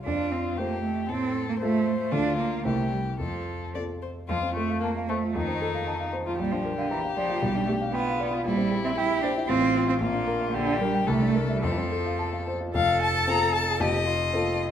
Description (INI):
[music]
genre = quick classical-period movement for piano trio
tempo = 115 BPM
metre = 2/4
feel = rubato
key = F major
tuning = A4 = 439 Hz
[part]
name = rich violin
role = melody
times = 0.0-14.6 s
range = A3 to Bb5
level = -30 LUFS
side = left 6 dB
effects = none
[part]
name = rich cello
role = second line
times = 0.0-14.7 s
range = D3 to A4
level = -28 LUFS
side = right 5 dB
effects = none
[part]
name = dark grand piano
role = accompaniment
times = 0.0-14.7 s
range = F1 to Bb5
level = -28 LUFS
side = left 1 dB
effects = none
[sound]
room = wet recital hall reverb, RT60 1.3 s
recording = none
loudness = -24 LUFS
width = side -9 dB against mid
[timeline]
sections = 0.0-4.3 A section; 4.3-12.8 B section; 12.8-14.7 B section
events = none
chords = 0.1 F; 1.1 F/A; 2.1 Dm; 2.6 C7; 3.2 F; 6.4 Bb; 7.4 G7/B; 8.4 C7/Bb; 9.5 F/A; 10.0 Bb; 10.5 Gm/Bb; 11.1 C13; 11.6 F